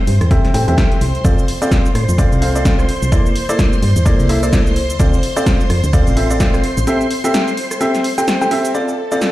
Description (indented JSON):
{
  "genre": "piano house",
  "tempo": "128 BPM",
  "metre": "4/4",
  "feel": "swing 59% on 16ths",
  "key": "F major",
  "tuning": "A4 = 443 Hz",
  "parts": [
    { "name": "string machine, violins", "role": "sustained chords", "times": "0.0-9.3 s", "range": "A4 to C6", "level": "-24 LUFS", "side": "left 1 dB", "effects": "ensemble chorus, sidechain pumping" },
    { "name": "solid FM bass", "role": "bass", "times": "0.1-6.9 s", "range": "A1 to A2", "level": "-16 LUFS", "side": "equal", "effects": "sidechain pumping" },
    { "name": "punchy analog drum machine", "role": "drums", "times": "0.1-9.3 s", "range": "hi-hat, rim click, shaker, snare drum", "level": "-22 LUFS", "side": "equal", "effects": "overdrive" },
    { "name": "bright upright piano", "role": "riff", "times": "0.3-9.3 s", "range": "Bb3 to G5", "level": "-18 LUFS", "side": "equal", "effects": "sidechain pumping, low-pass filter, tape echo" },
    { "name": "electronic kick drum", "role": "drums", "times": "0.3-6.5 s", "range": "none", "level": "-15 LUFS", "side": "equal", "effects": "overdrive" }
  ],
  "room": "light reverb, digital ambience",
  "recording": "played on a big sound system in a bare room, stone room reverb",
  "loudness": "-12 LUFS",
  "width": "side -15 dB against mid",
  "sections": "0.0-8.7 A section",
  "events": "none",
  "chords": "0.0 Am7/E; 1.2 F6; 3.1 C13/E; 4.8 Dm7; 6.9 Am7; 8.7 F6"
}